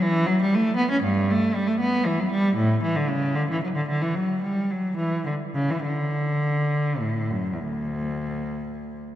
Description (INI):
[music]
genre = classical, baroque-style suite movement for unaccompanied cello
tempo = 66-79 BPM (dotted quarters)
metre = 12/8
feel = rubato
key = D major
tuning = A4 = 444 Hz
[part]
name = warm cello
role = solo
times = 0.0-9.1 s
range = D2 to C#4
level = -22 LUFS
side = equal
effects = none
[sound]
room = wet church reverb, RT60 3.3 s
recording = none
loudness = -22 LUFS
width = side -12 dB against mid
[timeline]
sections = 0.0-9.2 A section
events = none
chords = none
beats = 0.24 1.02 1.79 | 2.57 3.35 4.13 4.96 | 5.83 6.71 7.61 8.48